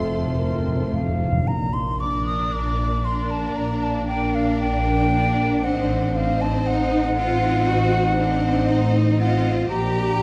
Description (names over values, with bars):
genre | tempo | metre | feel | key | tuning
classical, slow romantic movement for symphony orchestra | 51-60 BPM | 4/4 | rubato | Bb major | A4 = 437 Hz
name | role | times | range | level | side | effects
warm symphonic violin section | melody | 0.0-9.7 s | D5 to C6 | -40 LUFS | equal | none
mellow clarinet | second line | 0.0-1.1 s | C4 | -37 LUFS | equal | none
mellow silver concert flute | second line | 0.0-10.2 s | A4 to Eb6 | -28 LUFS | equal | none
warm symphonic violin section | second line | 0.0-9.7 s | A4 to C5 | -35 LUFS | equal | none
warm bassoon | accompaniment | 0.0-1.1 s | A3 | -36 LUFS | equal | none
warm symphonic viola section | accompaniment | 0.0-9.7 s | C4 to F4 | -35 LUFS | equal | none
dark French horn section | sustained chords | 0.0-10.2 s | A3 to Eb4 | -31 LUFS | equal | none
rich symphonic cello section | bass | 0.0-10.2 s | F2 to G4 | -28 LUFS | equal | none
rich symphonic double bass section | bass | 0.0-10.2 s | F1 to Bb1 | -26 LUFS | equal | none
timpani | percussion | 0.0-3.0 s | F2 to Bb2 | -28 LUFS | equal | none
room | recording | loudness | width
moderate recital hall reverb, RT60 1.5 s | dark, warm production | -21 LUFS | mono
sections
0.0-1.5 A section; 1.5-10.2 B section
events
timpani fill 0.0-1.5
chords
0.0 F; 1.5 Bb; 5.6 Adim7; 9.7 Bb